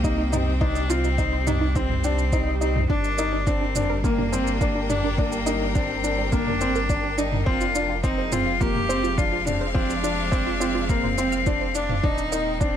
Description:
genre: piano and strings electronica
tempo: 105 BPM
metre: 4/4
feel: straight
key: F dorian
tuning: A4 = 439 Hz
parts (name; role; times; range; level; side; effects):
- bright cello; melody; 0.0-12.8 s; Bb3 to G4; -27 LUFS; left 2 dB; none
- clear studio string section; sustained chords; 0.0-12.8 s; C3 to G5; -32 LUFS; left 2 dB; sidechain pumping
- wide unison pluck; arpeggios; 0.0-12.7 s; D4 to F6; -33 LUFS; right 6 dB; sidechain pumping, ping-pong delay
- felt-muted upright piano; riff; 0.0-12.8 s; Bb3 to F4; -27 LUFS; left 1 dB; ping-pong delay
- warm sub bass; bass; 0.0-12.8 s; Eb1 to C2; -28 LUFS; equal; sidechain pumping
- electronic kick drum; drums; 0.0-12.7 s; none; -25 LUFS; equal; overdrive
- electronic shaker and toms; drums; 0.0-12.7 s; none; -30 LUFS; right 2 dB; overdrive
- swell; sound effects; 2.0-2.9 s; none; -35 LUFS; right 7 dB; none
room: light reverb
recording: none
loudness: -21 LUFS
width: side -9 dB against mid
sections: 0.0-12.8 A section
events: swell 2.0-2.9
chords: 0.0 Cm; 2.9 Gm; 7.5 Fm; 12.0 Eb

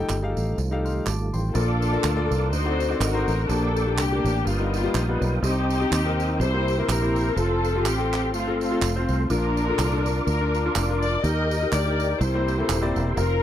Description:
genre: uptempo gospel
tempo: 124 BPM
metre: 4/4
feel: swing 57% on 8ths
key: Bb major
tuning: A4 = 440 Hz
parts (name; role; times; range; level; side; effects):
- bright concert grand piano; accompaniment; 0.0-13.4 s; G2 to F6; -27 LUFS; left 3 dB; none
- tonewheel organ; sustained chords; 0.0-13.4 s; Eb3 to D#6; -33 LUFS; right 2 dB; slow rotary speaker, chorus vibrato
- fingered electric bass; bass; 0.1-13.4 s; Eb1 to Eb2; -25 LUFS; right 1 dB; none
- handclaps and tambourine; percussion; 0.1-13.3 s; none; -33 LUFS; right 8 dB; none
- warm studio string section; melody; 1.5-13.4 s; A3 to Eb5; -26 LUFS; left 2 dB; tape echo
room: light reverb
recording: dry, close 1970s-style studio recording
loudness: -21 LUFS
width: side -11 dB against mid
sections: 0.0-1.6 A section; 1.6-13.4 B section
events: none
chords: 0.0 F9; 1.6 Bb; 2.5 D7b9; 3.5 Gm/Bb; 4.5 G7alt; 5.4 Cm; 6.4 C7; 7.4 F; 9.3 Bb; 11.2 Eb; 12.2 C7

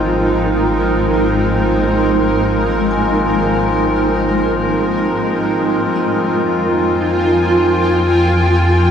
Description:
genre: ambient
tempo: free time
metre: none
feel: none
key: unclear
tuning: A4 = 440 Hz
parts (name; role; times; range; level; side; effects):
- granular cloud pad; sustained chords; 0.0-8.9 s; Ab3 to Ab5; -15 LUFS; right 1 dB; built-in reverb
- vibraphone with medium hard mallets; arpeggios; 0.0-8.9 s; Eb5 to Ab5; -28 LUFS; left 5 dB; tape echo
- deep rumbling drone; bass; 0.0-8.9 s; Ab1 to F2; -20 LUFS; equal; built-in reverb
- hand-pumped harmonium; drone; 0.0-8.9 s; F3 to C4; -20 LUFS; left 1 dB; none
room: wet lush hall reverb, RT60 3.2 s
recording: small room ambience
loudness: -13 LUFS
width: side -8 dB against mid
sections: 0.0-8.9 A section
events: fade-out on vibraphone 0.0-8.9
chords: 0.0 Ab69; 5.5 Fm9

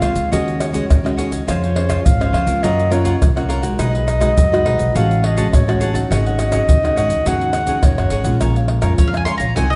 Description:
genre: samba and choro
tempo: 104 BPM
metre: 4/4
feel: straight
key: unclear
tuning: A4 = 440 Hz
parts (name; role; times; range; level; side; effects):
- dark clarinet; second line; 0.0-8.3 s; Db5 to Gb5; -23 LUFS; equal; none
- cavaquinho; accompaniment; 0.0-9.8 s; Eb4 to A5; -29 LUFS; equal; none
- nylon-string guitar; accompaniment; 0.0-9.8 s; Ab2 to C5; -25 LUFS; equal; none
- upright bass; bass; 0.0-9.8 s; F1 to Gb2; -22 LUFS; equal; none
- egg shaker, pandeiro, tamborim and surdo; percussion; 0.0-9.8 s; none; -21 LUFS; equal; none
- mandolin; melody; 9.0-9.8 s; Db5 to C6; -23 LUFS; equal; none
room: moderate recital hall reverb, RT60 1.4 s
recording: nothing above 10.8 kHz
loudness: -16 LUFS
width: mono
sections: 0.0-8.4 A section; 8.4-9.8 B section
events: clarinet solo 0.0-8.4; mandolin solo 8.4-9.8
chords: 0.3 Ab7sus4/Eb; 1.5 Dbmaj7/F; 2.6 Gbmaj7; 3.8 Cb6; 4.9 Gbmadd9/A; 6.1 Ab7sus4; 8.4 Bbm7

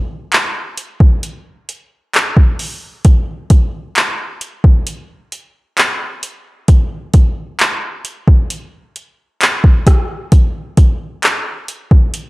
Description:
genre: R&B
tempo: 66 BPM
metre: 4/4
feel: straight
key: none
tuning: none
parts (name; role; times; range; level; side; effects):
- smooth R&B drum kit; drums; 0.3-12.3 s; handclaps, hi-hat, kick drum, rim click; -11 LUFS; equal; none
room: little or no reverb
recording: dry, gritty hardware recording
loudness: -12 LUFS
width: side -22 dB against mid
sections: 0.0-12.3 A section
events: none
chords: none

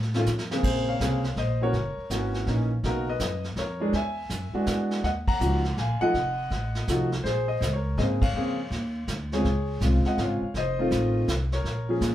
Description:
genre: jazz piano trio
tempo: 163 BPM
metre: 3/4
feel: swing 65% on 8ths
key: Bb minor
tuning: A4 = 440 Hz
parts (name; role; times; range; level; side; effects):
- clear concert grand piano; melody; 0.0-12.1 s; C#3 to Bb5; -27 LUFS; left 1 dB; none
- upright bass; bass; 0.0-12.1 s; F1 to Bb2; -28 LUFS; equal; none
- vintage brush drum kit; drums; 0.0-12.1 s; brushed snare drum, crash cymbal, hi-hat, kick drum, ride cymbal, snare drum; -32 LUFS; right 1 dB; none
room: wet small room reverb, RT60 0.5 s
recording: band playing live in one room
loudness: -24 LUFS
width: side -12 dB against mid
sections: 0.6-9.4 A section; 9.4-12.1 B section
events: drum fill 0.3-0.6; band accent 5.2, 8.2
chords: 0.3 F5; 0.6 Bbm9; 1.7 Gb7; 2.8 Bmaj9; 3.9 E9; 5.0 Ebm9; 6.1 F7b9; 7.2 Bbm9; 9.4 Dbmaj7; 10.5 F7; 11.6 Bbm7

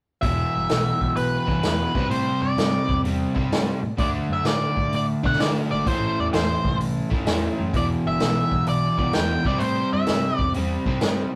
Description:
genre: blues rock power trio and southern rock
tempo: 128 BPM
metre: 4/4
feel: swing 67% on 8ths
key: E minor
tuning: A4 = 440 Hz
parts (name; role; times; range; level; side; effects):
- octave-fuzz lead guitar; melody; 0.2-10.5 s; B4 to G5; -28 LUFS; equal; distortion
- crunchy overdriven guitar; riff; 0.2-11.3 s; E2 to D4; -27 LUFS; equal; none
- vintage muted fingered electric bass; bass; 0.2-11.2 s; E1 to D3; -31 LUFS; equal; none
- vintage drum kit; drums; 0.2-11.2 s; hi-hat, kick drum, snare drum; -28 LUFS; equal; none
room: moderate studio ambience, RT60 0.5 s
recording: rough rehearsal-room recording, warm saturation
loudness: -23 LUFS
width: mono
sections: 0.2-11.4 A section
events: none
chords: 0.2 E5; 1.9 C; 4.0 D5; 5.9 Am; 7.7 E5; 9.4 C

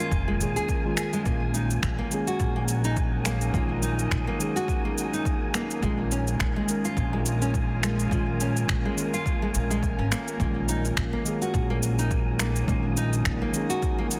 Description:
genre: organic downtempo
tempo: 105 BPM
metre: 4/4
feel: swing 56% on 16ths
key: unclear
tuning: A4 = 440 Hz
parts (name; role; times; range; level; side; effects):
- muted felt-like synth keys; accompaniment; 0.0-14.2 s; Eb3 to Bb4; -34 LUFS; equal; chorus, sidechain pumping, low-pass filter, digital delay, shimmer reverb
- airy breathy pad; sustained chords; 0.0-14.2 s; Gb3 to Bb4; -37 LUFS; equal; chorus, sidechain pumping, shimmer reverb
- nylon-string guitar; arpeggios; 0.0-14.1 s; Ab3 to Ab4; -34 LUFS; equal; digital delay, shimmer reverb
- electronic cabasa and finger snaps; drums; 0.0-14.2 s; none; -34 LUFS; equal; overdrive, small room ambience, soft clipping on snare
- wind-like tuned noise texture; texture; 0.0-14.2 s; Ab5; -40 LUFS; equal; built-in reverb, shimmer reverb
- upright bass; bass; 0.1-13.4 s; F1 to Eb2; -30 LUFS; equal; sidechain pumping
- electronic kick drum; drums; 0.1-14.0 s; none; -32 LUFS; equal; overdrive, small room ambience
room: light reverb, digital ambience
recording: dense, heavily limited modern master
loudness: -26 LUFS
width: mono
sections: 0.0-14.2 A section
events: none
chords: 0.0 Bbm7; 1.3 Ebm7/Bb; 5.8 Bbm7; 10.4 Ebm7/Bb

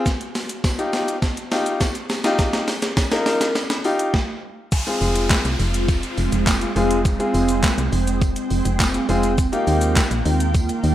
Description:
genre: dance-pop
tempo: 103 BPM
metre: 4/4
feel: straight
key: F minor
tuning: A4 = 435 Hz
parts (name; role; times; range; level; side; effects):
- clear baby grand piano; accompaniment; 0.0-10.1 s; Ab3 to Bb4; -22 LUFS; left 2 dB; sidechain pumping
- gated 80s digital drum machine; drums; 0.1-10.9 s; crash cymbal, handclaps, hi-hat, kick drum, shaker, snare drum; -21 LUFS; equal; gated reverb, gated reverb snare, overdrive
- tambourine; percussion; 0.1-10.9 s; none; -38 LUFS; right 3 dB; none
- ethereal airy pad; sustained chords; 5.1-10.9 s; Eb3 to G5; -24 LUFS; right 2 dB; ensemble chorus, built-in reverb, sidechain pumping
- downlifter; sound effects; 4.7-9.4 s; none; -32 LUFS; equal; none
- solid FM bass; bass; 5.0-10.9 s; F1 to Eb2; -22 LUFS; equal; sidechain pumping
room: light reverb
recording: rough home demo mix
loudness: -18 LUFS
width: side -12 dB against mid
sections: 0.0-4.7 A section; 4.7-10.9 B section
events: build-up 0.0-4.7; drum fill 0.0-4.1; stop 4.1-4.7; drop 4.7-10.9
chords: 0.1 Ebadd9; 4.7 Fm; 9.4 Ebadd9

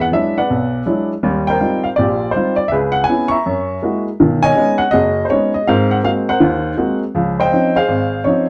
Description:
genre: jazz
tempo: 163 BPM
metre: 4/4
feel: swing 66% on 8ths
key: unclear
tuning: A4 = 440 Hz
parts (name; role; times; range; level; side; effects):
- warm upright piano; solo; 0.0-8.5 s; F#1 to Db6; -16 LUFS; equal; none
room: moderate studio reverb, RT60 0.5 s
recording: dark, warm production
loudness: -16 LUFS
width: mono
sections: 0.0-8.5 A section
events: none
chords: 0.0 E9; 1.2 Eb69; 2.7 Dbm7; 3.4 Gb9; 4.2 B69; 5.7 Ab9; 7.1 Dbmaj9

